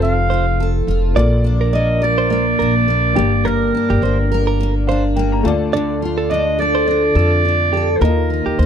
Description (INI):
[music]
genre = acoustic pop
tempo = 105 BPM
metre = 4/4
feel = swing 55% on 16ths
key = Bb major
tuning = A4 = 440 Hz
[part]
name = warm clarinet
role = melody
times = 0.0-8.7 s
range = Bb4 to F5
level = -19 LUFS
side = right 2 dB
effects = none
[part]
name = picked steel-string acoustic guitar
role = accompaniment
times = 0.0-8.7 s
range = G2 to Bb4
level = -20 LUFS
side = equal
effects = double-tracked left and right
[part]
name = warm upright piano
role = accompaniment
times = 0.0-8.7 s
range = A3 to Bb5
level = -24 LUFS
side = left 6 dB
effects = none
[part]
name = direct-recorded clean electric guitar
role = arpeggios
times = 0.0-8.7 s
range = G4 to D5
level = -23 LUFS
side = right 8 dB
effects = harmonic tremolo
[part]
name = upright bass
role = bass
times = 0.0-8.7 s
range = F1 to F2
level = -18 LUFS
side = equal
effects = none
[sound]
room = little or no reverb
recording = dry, close 1970s-style studio recording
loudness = -14 LUFS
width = side -8 dB against mid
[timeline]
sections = 0.0-1.2 A section; 1.2-8.7 B section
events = upright piano fill 4.6-5.7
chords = 0.0 F; 1.2 Bb; 3.2 Gm; 5.4 Dm; 8.0 Ebsus2